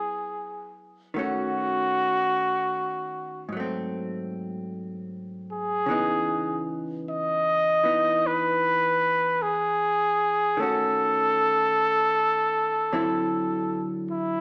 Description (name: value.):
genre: jazz ballad.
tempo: 51 BPM.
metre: 4/4.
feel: swing 67% on 8ths.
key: C# minor.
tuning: A4 = 440 Hz.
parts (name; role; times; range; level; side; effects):
breathy trumpet; melody; 0.0-14.4 s; E4 to D#5; -22 LUFS; equal; none.
hollow-body jazz guitar; accompaniment; 0.0-14.4 s; G#2 to F#4; -30 LUFS; equal; none.
room: moderate large studio reverb, RT60 1.2 s.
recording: small speaker sound.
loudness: -22 LUFS.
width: side -38 dB against mid.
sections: 0.0-14.4 A section.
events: none.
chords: 0.0 F#9sus4; 1.2 D#m7b5; 3.5 G#7b9; 5.9 C#m9; 10.6 D#m7b5; 12.9 D9.